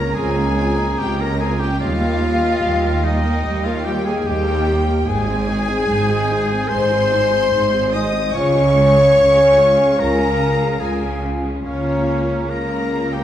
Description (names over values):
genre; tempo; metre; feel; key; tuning
cinematic; 73 BPM; 4/4; rubato; Ab major; A4 = 440 Hz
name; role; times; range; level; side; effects
rich symphonic violin section; melody; 0.0-13.2 s; Db5 to Eb6; -30 LUFS; left 1 dB; none
clear oboe; second line; 0.0-13.2 s; Db4 to Eb5; -27 LUFS; right 1 dB; none
hollow large flute ensemble; second line; 0.0-13.2 s; G5 to Bb5; -29 LUFS; equal; none
warm clarinet; second line; 0.0-13.2 s; C5 to F5; -32 LUFS; left 1 dB; none
warm symphonic violin section; second line; 0.0-13.2 s; Db5 to Eb6; -30 LUFS; left 2 dB; none
rich studio viola section; accompaniment; 0.0-13.2 s; G3 to Bb4; -25 LUFS; equal; none
mellow French horn section; sustained chords; 0.0-13.2 s; Db4 to Eb5; -18 LUFS; left 1 dB; none
clear symphonic cello section; bass; 0.0-13.2 s; Db2 to Db3; -24 LUFS; right 2 dB; none
clear symphonic double bass section; bass; 0.0-13.2 s; Ab1 to Eb2; -23 LUFS; right 2 dB; none
room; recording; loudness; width
wet recital hall reverb, RT60 1.5 s; dark, warm production; -15 LUFS; side -11 dB against mid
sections
0.0-13.2 A section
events
none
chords
0.0 Bbmadd9/Db; 1.8 Eb; 5.1 Ab; 8.3 Db; 11.6 Bbm/Db